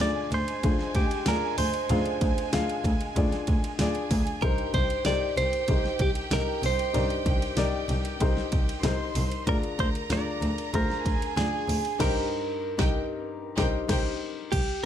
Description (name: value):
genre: piano-driven pop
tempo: 95 BPM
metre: 4/4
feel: straight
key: C minor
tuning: A4 = 439 Hz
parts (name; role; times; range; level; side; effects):
- direct-recorded clean electric guitar; melody; 0.0-14.8 s; G4 to D5; -30 LUFS; right 2 dB; phaser
- warm symphonic violin section; second line; 0.0-14.1 s; Ab3 to C6; -36 LUFS; right 2 dB; none
- dark upright piano; accompaniment; 0.0-14.5 s; G2 to F5; -32 LUFS; left 5 dB; none
- rich double bass; bass; 0.0-14.6 s; C2 to D2; -30 LUFS; equal; none
- pop drum kit; drums; 0.0-14.8 s; crash cymbal, hi-hat, kick drum, ride cymbal, snare drum; -29 LUFS; equal; none
room: little or no reverb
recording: none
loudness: -24 LUFS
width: side -10 dB against mid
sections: 0.0-14.5 A section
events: band accent 12.0-14.5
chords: 0.0 Ddim; 4.4 Cm7; 9.5 Ddim; 12.0 Cm7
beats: 0.00 0.63 1.26 | 1.89 2.53 3.16 3.79 | 4.42 5.05 5.68 6.32 | 6.95 7.58 8.21 8.84 | 9.47 10.10 10.74 11.37 | 12.00 12.63 13.26 13.89 | 14.53